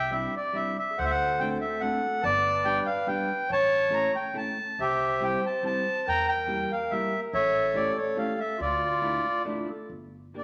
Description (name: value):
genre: musette waltz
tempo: 142 BPM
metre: 3/4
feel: rubato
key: D minor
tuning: A4 = 438 Hz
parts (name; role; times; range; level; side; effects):
- accordion; melody; 0.0-10.4 s; F4 to Bb5; -28 LUFS; equal; none
- warm clarinet; second line; 0.0-9.9 s; E4 to C#5; -37 LUFS; equal; none
- upright bass; bass; 0.0-10.4 s; G1 to E2; -41 LUFS; equal; none
- hollow-body jazz guitar; accompaniment; 0.1-10.4 s; G3 to Bb4; -38 LUFS; equal; none
room: wet large studio reverb, RT60 1.4 s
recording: none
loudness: -27 LUFS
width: mono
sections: 0.0-9.9 A section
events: none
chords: 0.0 Cadd9; 1.0 D7; 2.2 G; 3.5 A; 4.8 C; 6.1 Edim; 7.3 A7; 8.6 Dmadd9; 9.9 Gm